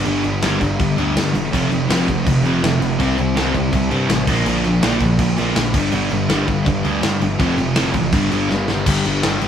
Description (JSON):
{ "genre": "punk rock", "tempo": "164 BPM", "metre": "4/4", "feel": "straight", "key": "unclear", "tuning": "A4 = 440 Hz", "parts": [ { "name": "sludgy distorted guitar", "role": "riff", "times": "0.0-9.5 s", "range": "F2 to C4", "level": "-22 LUFS", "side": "left 7 dB", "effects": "overdrive" }, { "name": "sludgy distorted guitar", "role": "riff", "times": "0.0-8.8 s", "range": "F2 to C4", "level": "-21 LUFS", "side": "right 5 dB", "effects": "overdrive" }, { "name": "thick fuzz guitar", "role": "riff", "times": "0.0-9.5 s", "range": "F2 to G4", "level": "-23 LUFS", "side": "equal", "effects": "distortion" }, { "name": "fuzz picked electric bass", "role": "bass", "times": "0.0-9.5 s", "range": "E1 to G2", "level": "-24 LUFS", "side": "equal", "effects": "overdrive" }, { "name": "big rock drum kit", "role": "drums", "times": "0.1-9.5 s", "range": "crash cymbal, kick drum, snare drum", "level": "-21 LUFS", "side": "equal", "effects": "none" } ], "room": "light reverb", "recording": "band playing live in one room", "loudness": "-15 LUFS", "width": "side -8 dB against mid", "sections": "0.0-8.9 A section", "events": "drum fill 8.5-8.9", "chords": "0.0 G; 1.5 F; 3.0 C; 4.3 Bb; 5.7 G; 7.4 F; 8.1 G", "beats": "| 0.06 0.43 0.79 1.16 | 1.53 1.90 2.26 2.63 | 3.00 3.36 3.73 4.10 | 4.46 4.83 5.20 5.57 | 5.93 6.30 6.67 7.03 | 7.40 7.77 8.13 8.50 | 8.87 9.23" }